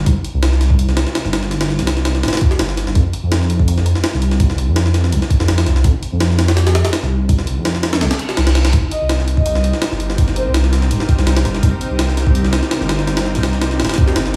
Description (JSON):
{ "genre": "drum and bass, jungle", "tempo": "166 BPM", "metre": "4/4", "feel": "swing 53% on 16ths", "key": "C minor", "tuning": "A4 = 439 Hz", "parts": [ { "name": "dark detuned saw bass", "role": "bass", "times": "0.0-14.4 s", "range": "G1 to F2", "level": "-18 LUFS", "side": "equal", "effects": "none" }, { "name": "jungle sampler-style drum kit", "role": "drums", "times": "0.1-14.4 s", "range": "hi-hat, kick drum, snare drum", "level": "-19 LUFS", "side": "equal", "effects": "none" }, { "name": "reverse cymbal", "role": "sound effects", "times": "8.2-8.7 s", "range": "none", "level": "-31 LUFS", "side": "equal", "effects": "none" }, { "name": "drifting glass-harmonics texture", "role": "texture", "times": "9.3-14.4 s", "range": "Eb4 to Eb5", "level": "-34 LUFS", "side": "equal", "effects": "none" }, { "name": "breathy flute-like synth lead", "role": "melody", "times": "8.9-10.5 s", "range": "C5 to Eb5", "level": "-26 LUFS", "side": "equal", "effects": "subtle chorus, dub echo" } ], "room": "little or no reverb", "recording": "studio reverb", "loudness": "-16 LUFS", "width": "mono", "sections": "0.0-14.4 A section", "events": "kick drops out 8.0-8.7; reverse cymbal 8.2-8.7", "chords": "0.0 C5; 3.0 F5; 8.7 Cm7" }